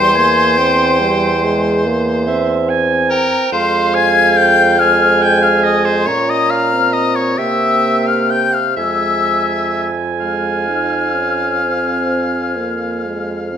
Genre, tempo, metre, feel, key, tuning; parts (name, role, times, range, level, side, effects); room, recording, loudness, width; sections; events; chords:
classical, slow romantic movement for wind quintet; 42-48 BPM (dotted quarters); 12/8; rubato; F minor; A4 = 440 Hz
mellow silver concert flute; melody; 0.0-13.6 s; Bb5 to Ab6; -16 LUFS; left 6 dB
bright oboe; second line; 0.0-13.6 s; Bb4 to Ab5; -20 LUFS; left 2 dB
mellow French horn; accompaniment; 0.0-13.6 s; G3 to Eb4; -20 LUFS; equal
warm clarinet; accompaniment; 0.0-13.6 s; E5 to Bb5; -20 LUFS; right 8 dB
mellow bassoon; bass; 0.0-13.6 s; E2 to C3; -19 LUFS; right 3 dB
wet recital hall reverb, RT60 1.4 s; -12 LUFS; side -8 dB against mid
0.0-13.6 A section
0.0 C7/E; 3.5 Fm; 6.1 Bbm; 7.4 C7; 8.8 Fm